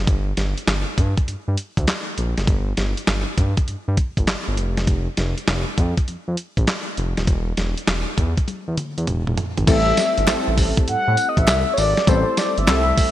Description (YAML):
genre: R&B, new jack swing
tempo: 100 BPM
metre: 4/4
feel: swing 67% on 16ths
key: G dorian, A dorian from 9.7 s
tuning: A4 = 440 Hz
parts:
  - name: smooth gliding synth bass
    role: bass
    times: 0.0-12.9 s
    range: Eb1 to A2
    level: -22 LUFS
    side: equal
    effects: none
  - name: dusty soul sampler-style drum kit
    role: drums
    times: 0.1-13.1 s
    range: crash cymbal, handclaps, hi-hat, kick drum, snare drum, tambourine, toms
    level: -20 LUFS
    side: equal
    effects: vintage 12-bit sampler grit
  - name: mellow horn-like synth lead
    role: melody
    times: 9.7-13.1 s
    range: C5 to F#5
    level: -20 LUFS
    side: left 1 dB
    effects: chorus
  - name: warm analog keys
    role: accompaniment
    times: 9.7-13.1 s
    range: G3 to A4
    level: -24 LUFS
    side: left 2 dB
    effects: chorus
  - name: group handclap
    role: percussion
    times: 10.3-12.9 s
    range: none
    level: barely audible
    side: none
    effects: none
room: light reverb, digital ambience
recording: bright 1980s-style digital production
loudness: -18 LUFS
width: side -13 dB against mid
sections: 0.0-9.7 A section; 9.7-13.1 B section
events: drum fill 8.5-9.7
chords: 0.1 N.C.; 9.7 Am7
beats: | 0.07 0.68 1.27 1.88 | 2.48 3.08 3.67 4.28 | 4.88 5.47 6.08 6.67 | 7.28 7.88 8.47 9.07 | 9.68 10.28 10.88 11.47 | 12.07 12.68